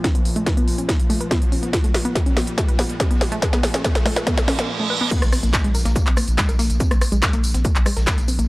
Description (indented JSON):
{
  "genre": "driving peak-time techno",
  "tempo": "142 BPM",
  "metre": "4/4",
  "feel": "straight",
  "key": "unclear",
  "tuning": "A4 = 436 Hz",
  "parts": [
    { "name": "warbly dusty pluck", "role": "riff", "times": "0.0-8.4 s", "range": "Ab3 to Cb5", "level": "-26 LUFS", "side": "equal", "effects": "chorus, tube saturation, sidechain pumping, tape echo" },
    { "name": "analog drone", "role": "drone", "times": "0.0-4.7 s", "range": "Bb2 to F3", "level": "-30 LUFS", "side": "left 1 dB", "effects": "chorus, sidechain pumping" },
    { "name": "electronic kick drum", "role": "drums", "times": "0.0-8.2 s", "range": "none", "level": "-20 LUFS", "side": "equal", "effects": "none" },
    { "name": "techno drum kit", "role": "drums", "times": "0.0-8.5 s", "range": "crash cymbal, handclaps, hi-hat, rim click, snare drum, tambourine", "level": "-24 LUFS", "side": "equal", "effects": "sidechain pumping on hats, sidechain pumping on perc, sidechain pumping on cymbals" },
    { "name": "riser, reverse cymbal and impact", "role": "sound effects", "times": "1.3-6.8 s", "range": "none", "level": "-30 LUFS", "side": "right 2 dB", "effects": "none" },
    { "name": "dusty soul sampler-style drum kit", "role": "drums", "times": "5.1-8.4 s", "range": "hi-hat, shaker, snare drum", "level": "-33 LUFS", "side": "equal", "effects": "none" },
    { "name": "saturated sub bass", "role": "bass", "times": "5.2-8.5 s", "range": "Bb1", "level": "-22 LUFS", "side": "equal", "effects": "tube saturation, sidechain pumping, low-pass filter" }
  ],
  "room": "little or no reverb",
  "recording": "dry, gritty hardware recording",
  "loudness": "-17 LUFS",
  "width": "side -21 dB against mid",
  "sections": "0.0-5.1 A section; 5.1-8.5 B section",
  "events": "build-up 0.0-5.1; drum fill 0.0-4.7; riser 1.3-4.7; filter sweep on synth arpeggio sound 0.0-5.1; reverse cymbal 4.3-5.1; drop 5.1-8.5; impact 5.1-6.8",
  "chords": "0.0 Bb5; 5.1 N.C.",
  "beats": "| 0.04 0.47 0.89 1.31 | 1.73 2.15 2.58 3.00 | 3.42 3.85 4.27 4.69 | 5.11 5.54 5.96 6.38 | 6.80 7.22 7.65 8.07"
}